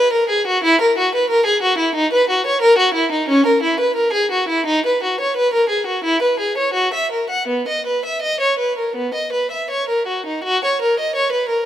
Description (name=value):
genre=classical, baroque-style suite movement for unaccompanied violin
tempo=78-92 BPM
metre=4/4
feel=rubato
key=B major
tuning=A4 = 439 Hz
part: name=rich violin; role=solo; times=0.0-11.7 s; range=B3 to F#5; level=-15 LUFS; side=equal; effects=none
room=light reverb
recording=close, detailed microphones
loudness=-15 LUFS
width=side -11 dB against mid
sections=0.0-10.5 A section; 10.5-11.7 A section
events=none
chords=none